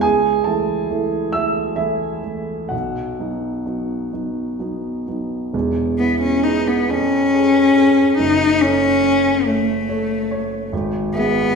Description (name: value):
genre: classical, romantic duo for cello and grand piano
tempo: 42-48 BPM (dotted quarters)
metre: 6/8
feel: rubato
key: E major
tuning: A4 = 440 Hz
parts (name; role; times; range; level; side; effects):
- dark baby grand piano; accompaniment; 0.0-11.6 s; E1 to E6; -20 LUFS; right 3 dB; none
- warm cello; melody; 6.0-11.6 s; A3 to D#4; -15 LUFS; left 2 dB; none
room: wet recital hall reverb, RT60 1.3 s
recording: heard from further back in the room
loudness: -16 LUFS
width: side -5 dB against mid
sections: 0.0-5.5 A section; 5.5-11.6 B section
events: none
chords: 0.0 A/C#; 2.7 B; 5.5 E; 6.9 C#7/E#; 8.2 F#m; 10.7 E/G#